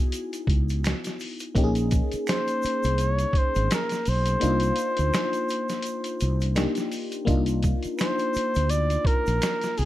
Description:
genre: R&B, neo-soul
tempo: 84 BPM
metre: 4/4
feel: swing 57% on 16ths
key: unclear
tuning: A4 = 441 Hz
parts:
  - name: FM electric piano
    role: accompaniment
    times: 0.0-9.9 s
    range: Bb3 to Ab4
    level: -29 LUFS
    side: left 3 dB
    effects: chorus
  - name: boom bap sampler-style drum kit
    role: drums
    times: 0.1-9.9 s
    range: hi-hat, kick drum, snare drum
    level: -27 LUFS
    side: equal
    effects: none
  - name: egg shaker and finger snaps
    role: percussion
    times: 0.1-9.9 s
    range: none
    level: -41 LUFS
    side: right 6 dB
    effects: none
  - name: mellow fretless electric bass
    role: bass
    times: 0.5-9.9 s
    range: Ab1 to D2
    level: -25 LUFS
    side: equal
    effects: none
  - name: breathy flugelhorn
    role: melody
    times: 2.3-9.9 s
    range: Ab4 to D5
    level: -27 LUFS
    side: equal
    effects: none
room: light reverb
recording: none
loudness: -22 LUFS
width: side -14 dB against mid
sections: 0.0-7.3 A section; 7.3-9.9 A section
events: kick muted 4.4-7.3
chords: 0.0 Dbm9; 1.6 Bbm9; 4.4 Cm9

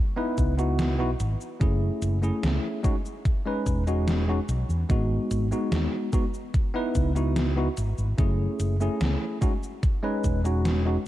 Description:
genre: vaporwave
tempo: 73 BPM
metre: 4/4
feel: straight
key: F# dorian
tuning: A4 = 440 Hz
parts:
  - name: bell-like tine electric piano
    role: accompaniment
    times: 0.2-11.0 s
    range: G#3 to B4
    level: -28 LUFS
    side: equal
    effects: medium stereo tremolo, wide subtle chorus, vintage 12-bit sampler grit, analog delay
  - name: mellow fretless electric bass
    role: bass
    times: 0.4-11.0 s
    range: E1 to E2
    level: -25 LUFS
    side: equal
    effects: tube saturation
  - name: electronic kick drum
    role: drums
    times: 0.4-10.4 s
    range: none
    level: -25 LUFS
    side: equal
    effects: overdrive
  - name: gated 80s digital drum machine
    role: drums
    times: 0.4-10.8 s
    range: cabasa, hi-hat, snare drum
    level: -32 LUFS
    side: equal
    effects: gated reverb, gated reverb snare, overdrive
room: light reverb, digital ambience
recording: dark, warm production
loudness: -23 LUFS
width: side -14 dB against mid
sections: 0.0-11.1 A section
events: none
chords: 0.0 C#m11; 1.6 F#m9; 2.8 Emaj13; 4.9 G#m7; 6.5 C#m11; 8.2 F#m9; 9.4 Emaj13

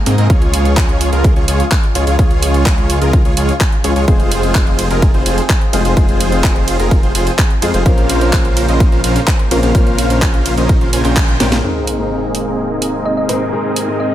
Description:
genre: EDM, festival progressive house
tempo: 127 BPM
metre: 4/4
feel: straight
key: Ab major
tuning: A4 = 440 Hz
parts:
  - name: lush unison pad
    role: sustained chords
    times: 0.0-14.1 s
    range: C3 to C5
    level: -24 LUFS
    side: equal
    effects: chorus, sidechain pumping
  - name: downlifter and sub drop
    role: sound effects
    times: 0.0-0.3, 11.6-13.5 s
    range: none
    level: -29 LUFS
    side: equal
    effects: none
  - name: dense compressed supersaw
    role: riff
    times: 0.1-14.1 s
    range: C4 to Ab5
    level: -19 LUFS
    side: right 1 dB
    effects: sidechain pumping, low-pass filter, digital delay
  - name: wide detuned saw bass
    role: bass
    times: 0.1-11.6 s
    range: F1 to Ab2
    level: -16 LUFS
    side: equal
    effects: chorus, tube saturation, sidechain pumping
  - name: house drum kit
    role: drums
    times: 0.1-13.9 s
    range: handclaps, hi-hat, ride cymbal, snare drum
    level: -20 LUFS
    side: right 1 dB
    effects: none
  - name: electronic kick drum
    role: drums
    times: 0.3-11.3 s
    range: none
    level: -12 LUFS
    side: equal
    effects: overdrive
  - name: dark concert grand piano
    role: accompaniment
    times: 4.1-14.1 s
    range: Ab2 to C5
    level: -22 LUFS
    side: left 4 dB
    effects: sidechain pumping, digital delay
  - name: thumb-piano-like synth pluck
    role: melody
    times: 13.1-14.1 s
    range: C5 to Eb5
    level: -20 LUFS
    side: right 1 dB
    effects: chorus, digital delay
room: light reverb, digital ambience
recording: none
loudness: -11 LUFS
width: side -12 dB against mid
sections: 0.0-11.6 A section; 11.6-14.1 B section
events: drop 0.0-11.6; band accent 11.2; drum fill 11.4; impact 11.6-13.5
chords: 0.3 Db; 4.1 Fm; 7.9 Bbmadd9; 11.6 Abadd9

